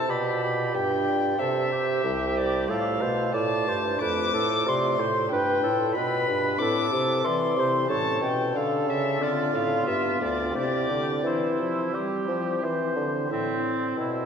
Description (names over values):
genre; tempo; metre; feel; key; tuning
classical, baroque-style sonata movement with continuo; 86-93 BPM; 4/4; straight; C major; A4 = 439 Hz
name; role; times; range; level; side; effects
dark violin; melody; 0.0-14.3 s; C5 to D6; -29 LUFS; left 4 dB; none
mellow oboe; second line; 0.0-14.3 s; C4 to D5; -30 LUFS; right 3 dB; none
pipe organ, stopped flute; accompaniment; 0.0-14.3 s; C2 to D5; -31 LUFS; left 1 dB; none
warm bassoon; bass; 0.0-14.3 s; C2 to G3; -27 LUFS; right 1 dB; none
room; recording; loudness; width
wet church reverb, RT60 2.8 s; none; -23 LUFS; side -7 dB against mid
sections
0.0-13.3 A section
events
none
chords
0.1 G7/B; 1.4 C; 2.7 F/A; 4.0 F; 5.3 G7; 6.6 Am; 7.9 A7; 9.2 Dm7; 9.9 G7; 10.6 C; 13.3 Am